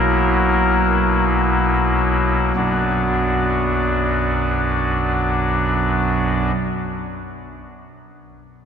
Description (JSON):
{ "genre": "classical, chorale-style piece for pipe organ", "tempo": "free time", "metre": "none", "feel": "none", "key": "B minor", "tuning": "A4 = 440 Hz", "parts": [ { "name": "pipe organ, soft reed", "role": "solo", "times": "0.0-6.5 s", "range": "B1 to D5", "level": "-17 LUFS", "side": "equal", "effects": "none" } ], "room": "wet cathedral reverb, RT60 4.4 s", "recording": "none", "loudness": "-16 LUFS", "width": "side -7 dB against mid", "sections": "0.0-2.6 A section; 2.6-7.6 B section", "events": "slowing down 0.0-2.6", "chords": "0.0 F#7/B; 2.6 Bm" }